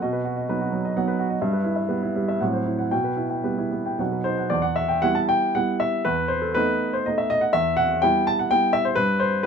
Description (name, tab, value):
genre	classical, romantic triple-time dance for piano with dotted rhythms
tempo	109-139 BPM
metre	3/4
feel	rubato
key	E minor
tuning	A4 = 440 Hz
part	warm baby grand piano	solo	0.0-9.5 s	E2 to A5	-20 LUFS	equal	none
room	light reverb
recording	minimal, uncompressed stereo recording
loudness	-20 LUFS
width	side -6 dB against mid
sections	0.0-4.5 A section; 4.5-9.5 B section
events	none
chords	0.0 B; 1.4 Em/G; 2.4 F#m7b5/A; 2.9 Em/B; 4.0 B; 4.5 Em; 6.1 B7/E; 7.5 Em